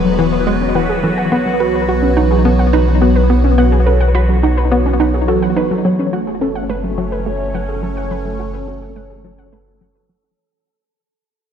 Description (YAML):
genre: ambient, sequencer-driven space music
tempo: 106 BPM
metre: 4/4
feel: straight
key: F# minor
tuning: A4 = 439 Hz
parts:
  - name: phased analog pad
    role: sustained chords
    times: 0.0-10.4 s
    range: E3 to C#5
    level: -18 LUFS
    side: right 1 dB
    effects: phaser, chorus
  - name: warbly dusty pluck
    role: arpeggios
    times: 0.0-10.3 s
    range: F#3 to F#5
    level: -22 LUFS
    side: right 2 dB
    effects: chorus, auto-pan, ping-pong delay
  - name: hollow square pluck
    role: riff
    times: 0.0-10.2 s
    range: E3 to B4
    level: -18 LUFS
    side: left 1 dB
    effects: chorus, ping-pong delay
  - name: round analog bass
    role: bass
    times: 0.0-10.3 s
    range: E1 to B1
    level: -17 LUFS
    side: equal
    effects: none
  - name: wind-like tuned noise texture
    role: texture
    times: 0.0-10.4 s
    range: A4 to C#5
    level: -28 LUFS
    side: left 1 dB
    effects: built-in reverb
room: moderate plate reverb, RT60 2.5 s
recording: dark, warm production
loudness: -12 LUFS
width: side -8 dB against mid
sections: 0.0-5.8 A section; 5.8-10.4 B section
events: fade-out on synth arpeggio sound 5.8-10.4; fade-out 5.8-10.4; filter sweep on synth arpeggio sound 5.8-10.4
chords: 0.0 Esus2; 1.3 Bsus4; 5.8 F#m7